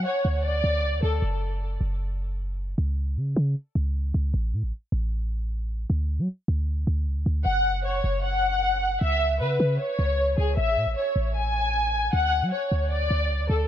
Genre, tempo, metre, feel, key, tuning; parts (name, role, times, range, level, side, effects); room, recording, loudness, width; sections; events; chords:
hip hop, trap; 154 BPM; 4/4; half-time; A4 = 441 Hz
dark studio violin section; melody; 0.0-1.2, 7.5-13.7 s; G#4 to G#5; -25 LUFS; left 1 dB; low-pass filter, tape echo
warm 808-style bass; bass; 0.0-13.7 s; F#1 to F#3; -25 LUFS; equal
moderate spring reverb, RT60 1.1 s, studio ambience; echo-heavy mix; -23 LUFS; side -11 dB against mid
0.0-13.7 A section
break 1.2-7.5
0.0 N.C.; 7.5 F#5; 9.0 C#m; 10.6 A; 12.1 D